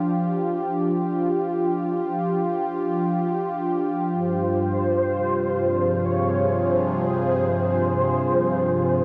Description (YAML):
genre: dark ambient drone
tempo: free time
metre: none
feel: none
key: unclear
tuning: A4 = 439 Hz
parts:
  - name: sweeping resonant pad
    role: sustained chords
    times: 0.0-9.0 s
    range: G2 to Ab4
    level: -24 LUFS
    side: equal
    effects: chorus
  - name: mellow horn-like synth lead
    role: melody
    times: 4.1-9.0 s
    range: C5 to C#5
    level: -26 LUFS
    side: equal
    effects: ensemble chorus, delay
room: wet huge ambient reverb, RT60 7.5 s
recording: dark, warm production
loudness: -23 LUFS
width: mono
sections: 0.0-9.0 A section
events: none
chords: 0.0 G7(no3); 4.2 Fm/G